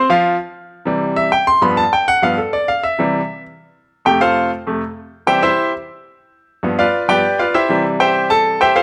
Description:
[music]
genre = latin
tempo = 197 BPM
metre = 4/4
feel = straight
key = C major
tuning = A4 = 440 Hz
[part]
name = bright baby grand piano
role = solo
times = 0.0-8.8 s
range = F2 to C6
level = -16 LUFS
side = equal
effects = none
[sound]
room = moderate large studio reverb, RT60 1.1 s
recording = none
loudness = -16 LUFS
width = mono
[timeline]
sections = 0.4-8.8 A section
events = grand piano solo 0.4-8.8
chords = 0.4 C; 1.6 G7; 2.8 C; 4.1 F; 5.3 C; 6.5 G7; 7.7 C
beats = 0.10 | 0.41 0.71 1.01 1.32 | 1.62 1.93 2.23 2.54 | 2.84 3.14 3.45 3.75 | 4.06 4.36 4.67 4.97 | 5.27 5.58 5.88 6.18 | 6.49 6.79 7.10 7.40 | 7.70 8.01 8.31 8.61

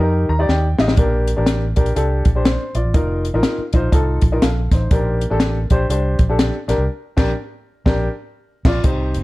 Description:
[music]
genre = uptempo 1960s-style soul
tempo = 122 BPM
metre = 4/4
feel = swing 61% on 8ths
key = unclear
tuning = A4 = 441 Hz
[part]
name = dark upright piano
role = accompaniment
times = 0.0-9.2 s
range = C3 to Bb5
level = -21 LUFS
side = left 1 dB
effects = none
[part]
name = vintage muted fingered electric bass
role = bass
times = 0.0-9.2 s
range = G1 to F2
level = -19 LUFS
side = equal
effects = none
[part]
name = compact cocktail drum kit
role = drums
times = 0.5-9.2 s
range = crash cymbal, hi-hat, kick drum, snare drum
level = -17 LUFS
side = equal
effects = none
[sound]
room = little or no reverb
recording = dark, warm production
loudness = -15 LUFS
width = side -19 dB against mid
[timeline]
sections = 0.0-8.8 A section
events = upright piano fill 0.0-1.0; drum fill 0.5-1.0; band accent 6.9-8.8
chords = 0.0 Eb; 1.0 Bb6; 2.9 F7sus4; 4.9 Bb6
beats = 0.48 | 0.98 1.47 1.96 2.45 | 2.94 3.43 3.93 4.42 | 4.91 5.40 5.89 6.39 | 6.88 7.37 7.86 8.36 | 8.85

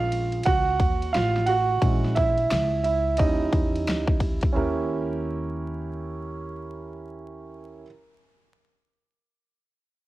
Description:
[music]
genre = hip hop, jazz-hop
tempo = 88 BPM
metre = 4/4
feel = swing 63% on 16ths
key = unclear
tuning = A4 = 440 Hz
[part]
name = warm concert grand piano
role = accompaniment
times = 0.0-7.9 s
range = G3 to Gb5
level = -25 LUFS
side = right 3 dB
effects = none
[part]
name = upright bass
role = bass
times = 0.0-7.9 s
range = A1 to Fb2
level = -29 LUFS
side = equal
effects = none
[part]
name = big-room dance drum kit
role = drums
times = 0.1-4.5 s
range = hi-hat, kick drum, ride cymbal, snare drum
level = -25 LUFS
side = equal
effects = overdrive
[sound]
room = light reverb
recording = home recording on cassette, vinyl crackle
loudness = -22 LUFS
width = side -16 dB against mid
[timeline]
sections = 0.0-4.6 A section; 4.6-7.3 B section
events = grand piano solo 0.0-4.6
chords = 0.0 Gbmaj7; 1.8 Bbm7b5; 3.2 Eb7b9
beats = 0.46 1.14 | 1.82 2.51 3.19 3.87 | 4.55 5.23 5.92 6.60

